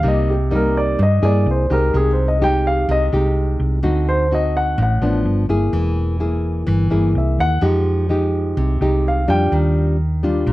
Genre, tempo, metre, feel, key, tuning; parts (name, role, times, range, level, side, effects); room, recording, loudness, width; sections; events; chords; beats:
bossa nova; 126 BPM; 4/4; straight; A4 = 440 Hz
warm grand piano; melody; 0.0-9.5 s; G4 to G5; -20 LUFS; left 1 dB; plate reverb
nylon-string guitar; accompaniment; 0.0-10.5 s; G2 to G#4; -20 LUFS; left 1 dB
hollow-body short-scale fingered electric bass; bass; 0.0-10.5 s; E1 to G2; -18 LUFS; equal
light reverb; dark, warm production; -15 LUFS; side -17 dB against mid
0.0-10.5 A section
grand piano solo 0.0-10.5
0.0 C7alt; 1.9 Fm9/C (rootless); 3.8 D7b9; 5.3 G7; 5.7 Edim; 7.2 C7alt; 7.6 Fm9; 9.5 Ebmaj9
| 0.04 0.51 0.98 1.46 | 1.93 2.41 2.88 3.36 | 3.83 4.31 4.78 5.25 | 5.73 6.20 6.68 7.15 | 7.63 8.10 8.57 9.05 | 9.52 10.00 10.47